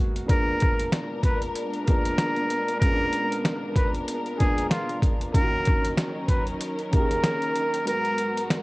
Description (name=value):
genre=hip hop, boom-bap hip-hop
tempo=95 BPM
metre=4/4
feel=swing 56% on 16ths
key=unclear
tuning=A4 = 440 Hz
part: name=dark baby grand piano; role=accompaniment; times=0.0-8.6 s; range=Ab2 to Bb4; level=-31 LUFS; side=equal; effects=cassette tape, high-pass filter, low-pass filter
part: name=trip hop sampler-style drum kit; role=drums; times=0.2-8.6 s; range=hi-hat, kick drum, snare drum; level=-24 LUFS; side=equal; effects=cassette tape
part: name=trumpet with straight mute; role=melody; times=0.3-8.5 s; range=F4 to Cb5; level=-27 LUFS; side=equal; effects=high-pass filter, low-pass filter, tape echo
part: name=warm studio string section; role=sustained chords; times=0.3-8.6 s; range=Gb3 to Bb4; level=-32 LUFS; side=left 1 dB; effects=high-pass filter, low-pass filter, cassette tape
room=light reverb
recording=home recording on cassette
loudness=-22 LUFS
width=side -22 dB against mid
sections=0.0-8.6 A section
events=kick muted 7.9-8.6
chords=0.3 Bb7b9; 5.3 Ebm7; 7.9 Abm9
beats=| 0.29 0.93 1.56 2.19 | 2.82 3.45 4.08 4.71 | 5.35 5.98 6.61 7.24 | 7.87 8.50